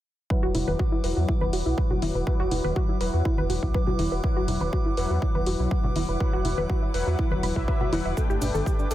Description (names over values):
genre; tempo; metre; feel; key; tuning
progressive house; 122 BPM; 4/4; straight; E minor; A4 = 443 Hz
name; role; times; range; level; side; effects
wide unison pluck; arpeggios; 0.3-8.9 s; D4 to B5; -30 LUFS; right 1 dB; sidechain pumping, ping-pong delay
soft supersaw; stabs; 0.3-8.9 s; F#3 to G5; -30 LUFS; left 3 dB; cassette tape, sidechain pumping, low-pass filter, ping-pong delay
electronic kick drum; drums; 0.3-8.8 s; none; -25 LUFS; equal; none
drifting glass-harmonics texture; texture; 0.6-8.9 s; D6; -39 LUFS; right 4 dB; chorus, built-in reverb, sidechain pumping
round analog bass; bass; 0.4-8.9 s; E1 to E2; -28 LUFS; equal; sidechain pumping
electronic hi-hat; drums; 0.5-8.9 s; none; -38 LUFS; left 3 dB; none
congas; percussion; 0.6-8.6 s; none; -33 LUFS; left 2 dB; sidechain pumping on perc
cabasa; percussion; 8.2-8.9 s; none; -41 LUFS; right 5 dB; none
room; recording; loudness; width
digital ambience; none; -23 LUFS; side -14 dB against mid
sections
0.3-8.9 A section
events
filter sweep on analog synth bass 0.3-8.9; filter sweep on synth pluck 0.3-8.9; filter sweep on supersaw synth 0.3-8.9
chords
0.3 Esus2; 8.2 Gadd9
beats
| 0.30 0.80 1.29 1.78 | 2.27 2.76 3.25 3.75 | 4.24 4.73 5.22 5.71 | 6.20 6.70 7.19 7.68 | 8.17 8.66